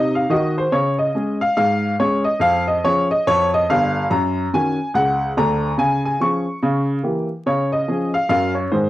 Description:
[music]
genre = jazz, stride piano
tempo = 143 BPM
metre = 4/4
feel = swing 61% on 8ths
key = Db major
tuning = A4 = 440 Hz
[part]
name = clear upright piano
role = solo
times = 0.0-8.9 s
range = G1 to Db6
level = -16 LUFS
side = equal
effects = none
[sound]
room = moderate studio reverb, RT60 0.5 s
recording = home recording on cassette, vinyl crackle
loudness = -16 LUFS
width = side -15 dB against mid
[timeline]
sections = 0.0-8.9 A section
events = none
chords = 0.0 Ab7 (rootless); 0.7 Db; 2.4 Db/F; 4.1 Gb6; 5.8 Db; 6.6 Dbdim7; 7.5 Db; 8.3 Gbmaj7

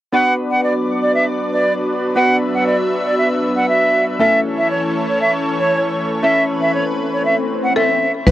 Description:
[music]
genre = pop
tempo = 118 BPM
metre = 4/4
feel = straight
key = B minor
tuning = A4 = 444 Hz
[part]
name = breathy bright silver concert flute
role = melody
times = 0.1-8.1 s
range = C#5 to F#5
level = -16 LUFS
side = right 1 dB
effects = cassette tape, tape echo
[part]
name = chorused retro synth keys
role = accompaniment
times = 0.1-8.2 s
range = A3 to B4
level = -21 LUFS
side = left 1 dB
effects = none
[part]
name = lush unison pad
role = sustained chords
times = 0.1-8.2 s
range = E3 to E5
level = -20 LUFS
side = equal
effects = chorus
[part]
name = swell and downlifter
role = sound effects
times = 6.6-8.3 s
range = none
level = -24 LUFS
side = left 3 dB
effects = none
[part]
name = buzzing marimba with medium hard mallets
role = melody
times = 7.8-8.3 s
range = A4 to B4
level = -19 LUFS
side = left 3 dB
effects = cassette tape
[part]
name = organ-like FM bass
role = bass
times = 8.3 s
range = B1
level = -8 LUFS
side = equal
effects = none
[sound]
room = moderate booth ambience, RT60 0.2 s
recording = home recording on cassette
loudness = -14 LUFS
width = side -14 dB against mid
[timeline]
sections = 0.1-8.3 A section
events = swell 6.6-8.3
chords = 0.1 Bm; 4.2 A

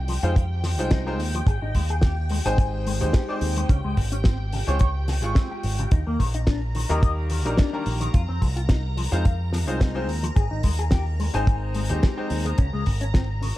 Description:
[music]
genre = nu-disco, nu disco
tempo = 108 BPM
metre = 4/4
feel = swing 54% on 16ths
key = unclear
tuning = A4 = 437 Hz
[part]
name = string machine, full ensemble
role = sustained chords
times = 0.0-13.6 s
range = G5 to Bb5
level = -36 LUFS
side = equal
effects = ensemble chorus, sidechain pumping
[part]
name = picked electric bass with an envelope filter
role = bass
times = 0.0-13.5 s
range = Ab1 to F2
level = -25 LUFS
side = equal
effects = tube saturation
[part]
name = electric guitar with an envelope filter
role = riff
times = 0.1-13.5 s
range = Db3 to Ab5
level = -32 LUFS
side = left 3 dB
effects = lush chorus
[part]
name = damped 70s drum kit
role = drums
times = 0.1-13.5 s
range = hi-hat, snare drum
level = -31 LUFS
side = left 1 dB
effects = none
[part]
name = clear grand piano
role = accompaniment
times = 0.2-12.6 s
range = Eb3 to Db6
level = -29 LUFS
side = left 1 dB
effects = sidechain pumping, slapback echo
[part]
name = kick drum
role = drums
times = 0.4-13.3 s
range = none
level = -19 LUFS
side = equal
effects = none
[sound]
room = small room ambience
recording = dark, warm production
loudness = -21 LUFS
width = side -16 dB against mid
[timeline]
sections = 0.0-13.6 A section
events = none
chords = 0.0 Fm7; 1.5 Abmaj7; 3.7 Dbmaj7; 5.9 Ebmaj7; 8.1 Fm7; 10.4 Abmaj7; 12.6 Db5

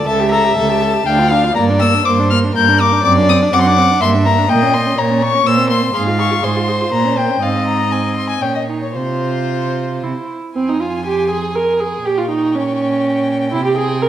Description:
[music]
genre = quick classical-period movement for string quartet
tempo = 121 BPM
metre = 3/4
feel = rubato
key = F minor from 4.5 s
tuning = A4 = 440 Hz
[part]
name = warm violin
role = melody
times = 0.0-14.1 s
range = C5 to G6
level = -18 LUFS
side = left 6 dB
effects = none
[part]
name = warm violin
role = second line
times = 0.0-14.1 s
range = Bb4 to Ab5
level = -21 LUFS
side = left 1 dB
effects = none
[part]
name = warm viola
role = accompaniment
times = 0.0-14.1 s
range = Bb3 to Bb4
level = -18 LUFS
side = right 2 dB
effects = none
[part]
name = rich cello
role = bass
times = 0.1-14.1 s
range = C#2 to C3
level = -19 LUFS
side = right 3 dB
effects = none
[sound]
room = wet recital hall reverb, RT60 1.3 s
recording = none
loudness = -13 LUFS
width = side -10 dB against mid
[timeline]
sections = 0.0-10.6 A section; 10.6-14.1 B section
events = none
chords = 0.1 A7/C#; 1.1 Dm; 1.6 Gm; 3.0 D7/F#; 4.0 Gm; 4.5 Bbmadd11; 5.5 C7/Bb; 5.9 Fm/Ab; 6.9 Gdim/Bb; 7.4 Ab69; 8.4 Bbmadd11; 8.9 F5/C; 10.0 C; 10.6 Fm; 12.1 Gdim/Bb; 13.5 C5

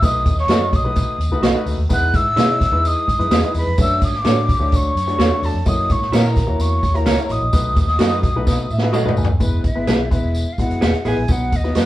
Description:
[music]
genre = uptempo 1960s-style soul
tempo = 128 BPM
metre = 4/4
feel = straight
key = E major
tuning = A4 = 440 Hz
[part]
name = breathy concert flute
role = melody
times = 0.0-11.9 s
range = B4 to F#6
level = -22 LUFS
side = left 1 dB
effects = none
[part]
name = vibraphone with medium hard mallets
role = second line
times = 0.0-8.9 s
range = A4 to F#5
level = -31 LUFS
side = right 2 dB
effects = none
[part]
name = clear upright piano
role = accompaniment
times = 0.0-11.9 s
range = F#3 to G#5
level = -25 LUFS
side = left 2 dB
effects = none
[part]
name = vintage muted fingered electric bass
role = bass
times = 0.0-11.9 s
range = E1 to B2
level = -21 LUFS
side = equal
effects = none
[part]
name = swinging big-band drum kit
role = drums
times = 0.0-11.9 s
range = hi-hat, kick drum, snare drum, toms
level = -18 LUFS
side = equal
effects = none
[part]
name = tambourine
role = percussion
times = 0.0-11.9 s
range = none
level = -36 LUFS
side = left 1 dB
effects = none
[part]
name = electric guitar through a small old amp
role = stabs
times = 0.5-11.9 s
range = E4 to E5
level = -23 LUFS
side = right 3 dB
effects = none
[sound]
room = wet studio reverb, RT60 0.6 s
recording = band playing live in one room, cassette tape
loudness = -15 LUFS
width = side -15 dB against mid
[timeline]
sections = 0.0-9.4 A section; 9.4-11.9 B section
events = drum fill 8.5-9.4; upright piano fill 8.5-9.4; flute solo 9.4-11.9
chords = 0.0 B7; 1.9 Emaj7; 3.8 Dmaj7; 5.7 F#7; 7.5 B7; 9.4 E; 11.3 B

